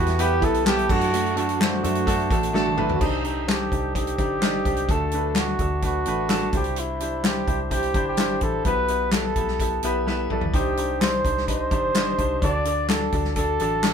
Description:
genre	piano-driven pop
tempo	128 BPM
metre	4/4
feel	straight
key	unclear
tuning	A4 = 440 Hz
part	warm flugelhorn	melody	0.0-13.9 s	Eb4 to D5	-26 LUFS	right 1 dB	tape echo
part	clear baby grand piano	accompaniment	0.0-13.9 s	B2 to Eb5	-26 LUFS	equal	none
part	fingerpicked plugged-in steel-string acoustic guitar	riff	0.0-3.0 s	F#3 to B4	-29 LUFS	right 6 dB	none
part	vintage muted fingered electric bass	bass	0.0-13.9 s	G1 to F#2	-29 LUFS	equal	none
part	natural country drum kit	drums	0.1-13.9 s	crash cymbal, handclaps, hi-hat, kick drum, snare drum, toms	-25 LUFS	left 1 dB	none
room	moderate studio reverb, RT60 0.5 s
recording	band playing live in one room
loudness	-20 LUFS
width	side -7 dB against mid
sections	0.0-3.0 A section; 3.0-13.9 B section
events	drum fill 2.5-3.0, 10.1-10.5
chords	0.0 Em; 0.9 D/F#; 3.0 Cmadd9; 4.9 D; 6.5 Cadd9; 8.7 Em/B; 10.5 Cmadd9; 12.4 D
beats	0.19 0.66 | 1.13 1.60 2.07 2.54 | 3.01 3.48 3.95 4.42 | 4.89 5.36 5.83 6.30 | 6.77 7.24 7.71 8.19 | 8.66 9.13 9.60 10.07 | 10.54 11.01 11.48 11.95 | 12.42 12.89 13.36 13.83

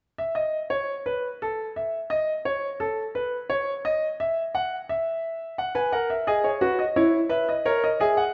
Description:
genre	classical, baroque-style 3-part fugue for grand piano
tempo	86 BPM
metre	4/4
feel	straight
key	unclear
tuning	A4 = 440 Hz
part	clear concert grand piano	solo	0.2-8.3 s	E4 to G#5	-26 LUFS	equal	none
room	moderate recital hall reverb, RT60 1.5 s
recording	nothing above 7.9 kHz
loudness	-26 LUFS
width	mono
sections	0.0-8.3 A section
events	none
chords	0.0 N.C.; 5.6 B; 7.0 C#m/E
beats	| 0.01 0.71 1.41 2.11 | 2.80 3.50 4.19 4.89 | 5.58 6.27 6.96 7.65

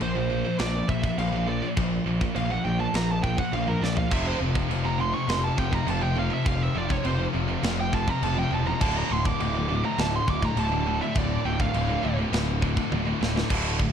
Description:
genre	heavy metal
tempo	102 BPM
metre	4/4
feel	straight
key	D minor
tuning	A4 = 437 Hz
part	high-gain lead guitar	melody	0.0-12.2 s	Bb4 to D6	-30 LUFS	right 4 dB	distortion, tape echo
part	heavy high-gain guitar	riff	0.0-13.9 s	D2 to F3	-32 LUFS	right 12 dB	distortion
part	scooped high-gain guitar	riff	0.0-13.9 s	D2 to F3	-30 LUFS	left 10 dB	distortion
part	fuzz picked electric bass	bass	0.0-13.9 s	D1 to Bb1	-28 LUFS	equal	overdrive
part	tight metal drum kit	drums	0.0-13.9 s	china cymbal, crash cymbal, kick drum, snare drum, toms	-30 LUFS	equal	none
part	heavy high-gain guitar	riff	4.1-13.9 s	D2 to F3	-33 LUFS	equal	distortion
room	little or no reverb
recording	dark, warm production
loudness	-23 LUFS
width	side -8 dB against mid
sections	0.0-13.5 A section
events	lead electric guitar solo 0.0-13.5; drum fill 3.8, 12.9-13.5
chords	0.0 Bb5; 4.1 F5; 8.8 D5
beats	0.01 0.60 1.19 | 1.77 2.36 2.95 3.54 | 4.12 4.71 5.29 5.88 | 6.47 7.05 7.64 8.23 | 8.81 9.40 9.99 10.57 | 11.16 11.75 12.33 12.92 | 13.51

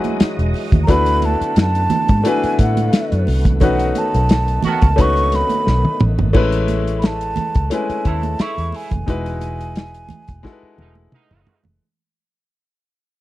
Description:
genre	lush 1970s-style soul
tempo	88 BPM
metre	4/4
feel	swing 54% on 16ths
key	E major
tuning	A4 = 441 Hz
part	mellow hollow concert flute	melody	0.0-11.1 s	F#5 to C#6	-22 LUFS	right 2 dB	none
part	clear grand piano	accompaniment	0.0-11.8 s	F#3 to B4	-22 LUFS	left 3 dB	none
part	overdriven tonewheel organ	sustained chords	0.0-6.3 s	D3 to D#5	-28 LUFS	equal	chorus vibrato, slow rotary speaker
part	warm soul drum kit	drums	0.0-11.8 s	crash cymbal, hi-hat, kick drum, snare drum, toms	-16 LUFS	equal	none
part	congas	percussion	0.0-11.8 s	none	-26 LUFS	right 6 dB	none
part	vintage muted fingered electric bass	bass	0.2-11.8 s	E1 to A2	-19 LUFS	equal	none
part	warm horn section	stabs	4.6-11.6 s	B2 to F#4	-26 LUFS	right 6 dB	none
room	little or no reverb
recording	dry, close 1970s-style studio recording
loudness	-14 LUFS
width	side -16 dB against mid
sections	0.0-6.3 A section; 6.3-11.8 B section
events	band accent 3.6-6.3; drum fill 5.7-6.3, 10.4-11.8; fade-out 6.3-11.8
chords	0.0 Emaj9; 0.9 D6; 3.6 B7; 6.3 Amaj7; 9.1 Emaj9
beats	0.20 | 0.88 1.57 2.25 2.93 | 3.62 4.30 4.98 5.66 | 6.34 7.03 7.71 8.39 | 9.08 9.76 10.44 11.12

